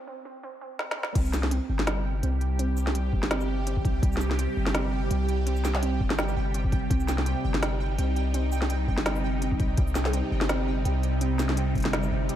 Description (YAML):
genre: half-time drum and bass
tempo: 167 BPM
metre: 4/4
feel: swing 55% on 16ths, half-time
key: C minor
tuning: A4 = 440 Hz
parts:
  - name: warbly dusty pluck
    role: arpeggios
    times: 0.0-12.4 s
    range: G3 to G4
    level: -35 LUFS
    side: right 3 dB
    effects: chorus, vintage 12-bit sampler grit, tape echo
  - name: organic electronic drum kit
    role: drums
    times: 0.8-12.4 s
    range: crash cymbal, hi-hat, shaker, snare drum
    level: -31 LUFS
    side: equal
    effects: none
  - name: bowed-like drone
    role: sustained chords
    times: 2.1-12.4 s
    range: C3 to G4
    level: -32 LUFS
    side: right 1 dB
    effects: built-in reverb, phaser, sidechain pumping
  - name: pulsing gated texture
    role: texture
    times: 1.7-12.4 s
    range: G5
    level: -40 LUFS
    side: right 8 dB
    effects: chorus, built-in reverb
  - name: long sustained 808-style bass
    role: bass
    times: 1.2-12.3 s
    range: G1 to C2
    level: -27 LUFS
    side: left 1 dB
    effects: none
  - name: electronic kick drum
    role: drums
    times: 1.2-11.8 s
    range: none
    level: -26 LUFS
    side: equal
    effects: overdrive
room: light reverb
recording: high-pass filter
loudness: -24 LUFS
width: side -11 dB against mid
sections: 0.0-1.2 A section; 1.2-12.4 B section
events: break 0.0-1.2; build-up 0.0-1.2; filter sweep on synth pluck 0.0-1.2; filter sweep 0.0-1.2; drum fill 0.8-1.2; drop 1.2-12.4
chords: 0.0 C5